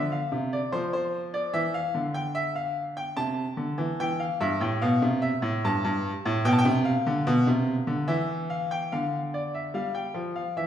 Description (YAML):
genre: classical, baroque-style two-part invention for grand piano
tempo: 73 BPM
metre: 3/4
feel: straight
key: unclear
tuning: A4 = 440 Hz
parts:
  - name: bright baby grand piano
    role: solo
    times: 0.0-10.7 s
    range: G2 to A5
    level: -24 LUFS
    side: equal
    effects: none
room: wet recital hall reverb, RT60 1.5 s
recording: heard from further back in the room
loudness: -24 LUFS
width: side -10 dB against mid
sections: 0.0-8.9 A section; 8.9-10.7 B section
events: none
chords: 0.0 F5; 0.7 Dm/F; 1.6 Dmadd9; 3.2 C69; 4.0 C; 5.6 Gsus2; 6.5 G/B (rootless); 8.1 Em; 8.9 G5/D